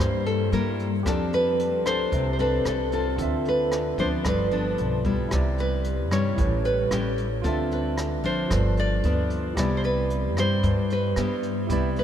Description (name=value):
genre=bossa nova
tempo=113 BPM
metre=4/4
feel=straight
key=C major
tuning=A4 = 441 Hz
part: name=nylon-string guitar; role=melody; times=0.0-12.0 s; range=G4 to D5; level=-28 LUFS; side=equal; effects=none
part: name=barky tine electric piano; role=accompaniment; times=0.0-12.0 s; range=C4 to B5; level=-32 LUFS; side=moving between left 1 dB and right 8 dB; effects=auto-pan
part: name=nylon-string guitar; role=accompaniment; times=0.0-12.0 s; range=G2 to A4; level=-27 LUFS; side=left 2 dB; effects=none
part: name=upright bass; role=bass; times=0.0-12.0 s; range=G1 to G2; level=-28 LUFS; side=equal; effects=none
part: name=jazz brush drum kit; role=drums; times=0.3-12.0 s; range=hi-hat, kick drum, rim click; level=-33 LUFS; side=right 1 dB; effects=none
room=wet cathedral reverb, RT60 6.3 s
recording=in a vast, echoing space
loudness=-22 LUFS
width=side -9 dB against mid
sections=0.0-12.0 A section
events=none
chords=0.0 C7; 1.1 F6; 3.2 Dm7; 4.2 G7; 5.3 Cmaj7; 6.4 A7; 7.4 Dm7; 8.5 G7; 9.6 Cmaj7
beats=0.53 | 1.06 1.59 2.12 2.65 | 3.19 3.72 4.25 4.78 | 5.31 5.85 6.38 6.91 | 7.44 7.97 8.51 9.04 | 9.57 10.10 10.63 11.17 | 11.70